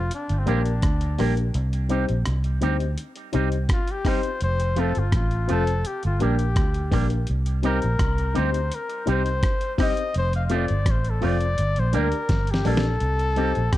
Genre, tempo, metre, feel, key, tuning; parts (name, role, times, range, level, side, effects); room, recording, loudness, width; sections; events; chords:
roots reggae; 84 BPM; 4/4; straight; A4 = 440 Hz
clear flugelhorn; melody; 0.0-13.8 s; C4 to F5; -28 LUFS; left 3 dB; tape echo
vintage muted fingered electric bass; bass; 0.0-13.8 s; F1 to D2; -23 LUFS; equal
dusty soul sampler-style drum kit; drums; 0.1-13.8 s; hi-hat, kick drum, rim click, snare drum; -25 LUFS; equal
electric guitar with an envelope filter; accompaniment; 0.5-13.5 s; F3 to G4; -31 LUFS; right 7 dB; tape echo
dark upright piano; stabs; 0.5-13.6 s; Bb3 to D5; -28 LUFS; left 6 dB
digital ambience; dark, warm production; -21 LUFS; side -14 dB against mid
0.0-13.0 A section
flugelhorn solo 0.0-13.0; kick muted 1.5-3.0; drum fill 12.3-13.0
0.1 Gm; 1.5 Cm; 4.4 F; 5.8 Gm; 7.3 Cm; 10.1 F; 11.6 Gm; 13.0 Cm